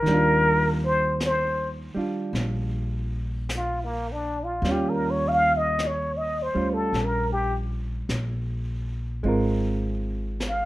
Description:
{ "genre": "jazz ballad", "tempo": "52 BPM", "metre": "4/4", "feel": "swing 67% on 8ths", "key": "unclear", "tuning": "A4 = 441 Hz", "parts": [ { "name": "trumpet with plunger mute", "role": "melody", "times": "0.0-10.7 s", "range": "Bb3 to F5", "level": "-24 LUFS", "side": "left 1 dB", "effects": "none" }, { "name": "hollow-body jazz guitar", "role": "accompaniment", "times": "0.0-10.7 s", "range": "Eb3 to Bb4", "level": "-28 LUFS", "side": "right 2 dB", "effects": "none" }, { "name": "upright bass", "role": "bass", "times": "0.0-10.7 s", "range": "Ab1 to Eb2", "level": "-29 LUFS", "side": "equal", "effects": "none" }, { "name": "jazz brush drum kit", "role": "drums", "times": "0.1-10.7 s", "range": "brushed snare drum, hi-hat, snare drum", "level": "-36 LUFS", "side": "equal", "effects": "none" } ], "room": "moderate studio reverb, RT60 0.6 s", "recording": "rough home demo mix", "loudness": "-23 LUFS", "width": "side -17 dB against mid", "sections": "0.0-10.7 A section", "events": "muted trumpet solo 0.0-10.7", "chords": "0.1 Ebmaj9; 4.6 Eb9; 9.2 Ab69", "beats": "| 0.05 1.20 2.34 3.48 | 4.63 5.78 6.93 8.08 | 9.24 10.39" }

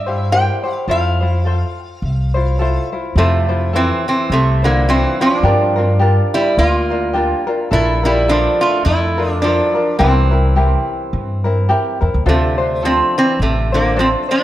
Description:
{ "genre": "Hawaiian", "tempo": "105 BPM", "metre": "4/4", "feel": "swing 57% on 8ths", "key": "F major", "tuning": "A4 = 442 Hz", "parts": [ { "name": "lap resonator guitar", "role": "melody", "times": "0.0-14.4 s", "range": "C3 to G5", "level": "-16 LUFS", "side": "right 1 dB", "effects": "analog delay" }, { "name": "tenor ukulele", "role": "accompaniment", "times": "0.0-14.4 s", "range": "C4 to C5", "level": "-20 LUFS", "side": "left 2 dB", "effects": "none" }, { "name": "upright bass", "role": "bass", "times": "0.0-14.1 s", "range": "A1 to G2", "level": "-16 LUFS", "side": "equal", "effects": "none" } ], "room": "moderate recital hall reverb, RT60 1.4 s", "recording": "dark, warm production", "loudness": "-13 LUFS", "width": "side -14 dB against mid", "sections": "0.0-3.2 A section; 3.2-14.4 A section", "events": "none", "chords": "0.0 C7; 0.9 Fmaj7; 5.4 Gm7; 7.7 Bbmaj7; 10.0 C7; 12.3 Dm7", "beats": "0.31 | 0.88 1.45 2.02 2.59 | 3.16 3.73 4.30 4.87 | 5.44 6.01 6.58 7.15 | 7.71 8.28 8.85 9.42 | 9.99 10.56 11.13 11.70 | 12.27 12.84 13.40 13.97" }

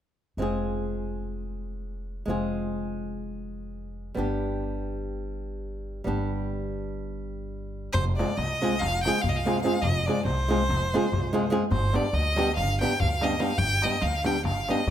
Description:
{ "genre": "balkan folk, Balkan wedding band", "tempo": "286 BPM (eighths)", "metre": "9/8", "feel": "straight", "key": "F dorian sharp4", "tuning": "A4 = 442 Hz", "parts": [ { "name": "flamenco guitar", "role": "accompaniment", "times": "0.4-14.8 s", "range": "G3 to Ab4", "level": "-29 LUFS", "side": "equal", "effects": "none" }, { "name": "upright bass", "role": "bass", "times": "0.4-14.9 s", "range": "F1 to D2", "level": "-31 LUFS", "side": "equal", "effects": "none" }, { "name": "clear violin", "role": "melody", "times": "7.9-14.9 s", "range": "C5 to G5", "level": "-28 LUFS", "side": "equal", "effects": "none" }, { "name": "darbuka", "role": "percussion", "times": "7.9-14.9 s", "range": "none", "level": "-32 LUFS", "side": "left 2 dB", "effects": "none" } ], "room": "moderate recital hall reverb, RT60 1.8 s", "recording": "close, detailed microphones", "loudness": "-24 LUFS", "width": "side -10 dB against mid", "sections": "0.4-8.0 A section; 8.0-14.9 B section", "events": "none", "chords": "0.4 Fm; 4.2 G; 8.0 Fm; 11.7 G", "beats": "| 0.38 0.59 0.80 1.01 1.22 1.43 1.64 1.85 2.06 | 2.27 2.48 2.69 2.90 3.12 3.33 3.54 3.75 3.96 | 4.17 4.38 4.59 4.80 5.01 5.22 5.43 5.64 5.85 | 6.06 6.27 6.48 6.69 6.90 7.11 7.32 7.53 7.74 | 7.95 8.16 8.37 8.58 8.79 9.00 9.21 9.41 9.62 | 9.83 10.04 10.25 10.46 10.67 10.87 11.08 11.29 11.50 | 11.71 11.92 12.12 12.33 12.54 12.75 12.96 13.17 13.38 | 13.58 13.79 14.00 14.21 14.42 14.62 14.83" }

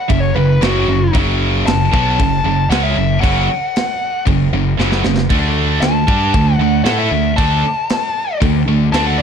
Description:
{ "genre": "heavy metal", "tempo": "115 BPM", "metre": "4/4", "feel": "straight", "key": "F# phrygian", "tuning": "A4 = 440 Hz", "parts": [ { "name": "high-gain lead guitar", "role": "melody", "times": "0.0-9.2 s", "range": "F#4 to A5", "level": "-19 LUFS", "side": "left 2 dB", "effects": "distortion" }, { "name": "high-gain distorted guitar", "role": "riff", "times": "0.1-9.2 s", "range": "F#2 to A4", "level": "-20 LUFS", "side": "left 14 dB", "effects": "distortion" }, { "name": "tight distorted guitar", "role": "riff", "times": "0.1-9.2 s", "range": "F#2 to A4", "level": "-18 LUFS", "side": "right 12 dB", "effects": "distortion" }, { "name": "fuzz picked electric bass", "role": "bass", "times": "0.1-9.2 s", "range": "F#1 to A2", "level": "-18 LUFS", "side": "equal", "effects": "overdrive" }, { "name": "tight metal drum kit", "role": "drums", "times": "0.1-9.1 s", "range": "crash cymbal, kick drum, snare drum", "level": "-20 LUFS", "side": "equal", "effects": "none" } ], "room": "light reverb", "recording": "dark, warm production", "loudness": "-12 LUFS", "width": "side -7 dB against mid", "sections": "0.0-9.2 A section", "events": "lead electric guitar solo 0.0-9.2; drum fill 4.8-5.3", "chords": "0.0 F#5; 5.3 D5", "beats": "0.09 0.61 | 1.13 1.65 2.17 2.69 | 3.21 3.73 4.25 4.78 | 5.29 5.82 6.33 6.85 | 7.37 7.89 8.41 8.93" }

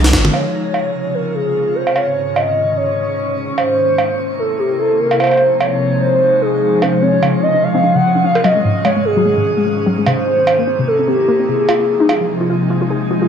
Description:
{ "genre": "IDM", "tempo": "148 BPM", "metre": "4/4", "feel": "swing 56% on 16ths", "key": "Db major", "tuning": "A4 = 440 Hz", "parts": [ { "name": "glassy FM pad", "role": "sustained chords", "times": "0.0-13.3 s", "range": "Ab2 to F4", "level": "-19 LUFS", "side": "equal", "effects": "ensemble chorus, built-in reverb, shimmer reverb" }, { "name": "jungle sampler-style drum kit", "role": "drums", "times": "0.0-12.2 s", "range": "cowbell, hi-hat, snare drum, toms", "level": "-18 LUFS", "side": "right 3 dB", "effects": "low-pass filter on hats, low-pass filter on perc, low-pass filter on snare, low-pass filter on toms, low-pass filter on room" }, { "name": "warbly dusty pluck", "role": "arpeggios", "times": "0.1-0.3, 6.8-13.3 s", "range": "Ab2 to Ab4", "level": "-20 LUFS", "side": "left 3 dB", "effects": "wide subtle chorus, tape echo, shimmer reverb" }, { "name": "warbly nostalgic lead", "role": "melody", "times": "0.3-12.9 s", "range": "G4 to Gb5", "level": "-15 LUFS", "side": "equal", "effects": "chorus, tape echo, shimmer reverb" } ], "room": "wet echo chamber reverb, RT60 1.3 s, digital ambience", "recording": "none", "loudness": "-13 LUFS", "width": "side -7 dB against mid", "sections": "0.3-13.3 A section", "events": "drum fill 0.0-0.3; band accent 0.1", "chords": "0.3 Dbmaj7; 2.0 Absus4; 3.6 C7; 5.2 Fm7/C; 6.8 Dbmaj7; 8.4 Absus4; 10.1 C7; 11.7 Fm7/C", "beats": "| 0.34 0.74 1.15 1.55 | 1.96 2.36 2.77 3.17 | 3.58 3.98 4.39 4.79 | 5.20 5.61 6.01 6.42 | 6.82 7.23 7.63 8.04 | 8.44 8.85 9.25 9.66 | 10.06 10.47 10.88 11.28 | 11.69 12.09 12.50 12.90" }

